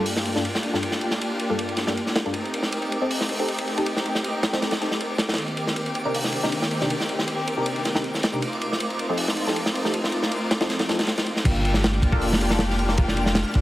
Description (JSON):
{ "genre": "drum and bass, jungle", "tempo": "158 BPM", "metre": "4/4", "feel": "swing 53% on 16ths", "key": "G minor", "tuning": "A4 = 440 Hz", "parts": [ { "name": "rich studio string section", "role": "sustained chords", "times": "0.0-13.6 s", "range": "Eb3 to G4", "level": "-28 LUFS", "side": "equal", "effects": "low-pass filter" }, { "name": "band-passed chord stab", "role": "stabs", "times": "0.0-13.0 s", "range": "G2 to Bb4", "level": "-29 LUFS", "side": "left 1 dB", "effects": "phaser, wide subtle chorus, dub echo" }, { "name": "twinkling granular texture", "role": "texture", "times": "0.0-13.6 s", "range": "D6 to F6", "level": "-37 LUFS", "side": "right 1 dB", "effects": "built-in reverb" }, { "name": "crunchy breakbeat drum kit", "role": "drums", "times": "0.1-13.6 s", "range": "crash cymbal, hi-hat, kick drum, ride cymbal, snare drum", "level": "-24 LUFS", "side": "equal", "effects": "high-pass filter on kick, high-pass filter on cymbals, high-pass filter on hats, high-pass filter on snare, high-pass filter on room" }, { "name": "saturated sub bass", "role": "bass", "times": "11.5-13.6 s", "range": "F1 to G1", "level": "-25 LUFS", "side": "equal", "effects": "none" } ], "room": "light reverb", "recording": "heavily compressed radio sound", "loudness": "-21 LUFS", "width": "side -15 dB against mid", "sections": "0.0-11.5 A section; 11.5-13.6 B section", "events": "drop 11.5-13.6", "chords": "0.0 Gm7; 2.3 Am7b5; 5.4 Cm7; 8.4 F7; 11.5 Gm7", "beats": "0.06 0.44 | 0.82 1.20 1.58 1.96 | 2.34 2.72 3.10 3.48 | 3.86 4.24 4.62 5.00 | 5.38 5.76 6.14 6.52 | 6.90 7.28 7.66 8.04 | 8.42 8.80 9.18 9.56 | 9.94 10.32 10.70 11.08 | 11.46 11.84 12.22 12.60 | 12.97 13.36" }